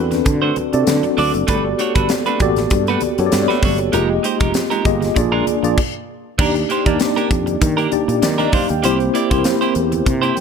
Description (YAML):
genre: polished 1980s jazz-funk pop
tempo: 98 BPM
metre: 4/4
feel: swing 54% on 16ths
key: Eb major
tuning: A4 = 440 Hz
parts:
  - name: mellow tine electric piano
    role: accompaniment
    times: 0.0-10.4 s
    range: A3 to G5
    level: -18 LUFS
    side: left 2 dB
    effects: medium stereo tremolo, analog chorus
  - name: fretless electric bass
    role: bass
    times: 0.0-10.3 s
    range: F1 to Eb3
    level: -21 LUFS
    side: equal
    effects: none
  - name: clean electric guitar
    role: riff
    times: 0.1-10.4 s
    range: Ab3 to D5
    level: -22 LUFS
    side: right 6 dB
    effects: wide subtle chorus
  - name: crisp fusion drum kit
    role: drums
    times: 0.1-10.4 s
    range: crash cymbal, hi-hat, kick drum, snare drum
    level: -20 LUFS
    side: equal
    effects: gated reverb
  - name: congas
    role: percussion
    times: 0.1-10.4 s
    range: none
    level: -33 LUFS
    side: equal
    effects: none
room: light reverb, small room ambience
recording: none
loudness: -15 LUFS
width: side -6 dB against mid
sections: 0.0-6.4 A section; 6.4-10.4 B section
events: stop 5.8-6.4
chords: 0.0 D7; 1.5 Gmaj9; 3.9 Fm11; 5.2 Bb7; 6.4 Ebmaj7; 8.8 C7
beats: 0.26 0.88 | 1.49 2.10 2.71 3.33 | 3.94 4.55 5.16 5.78 | 6.39 7.00 7.61 8.22 | 8.84 9.45 10.06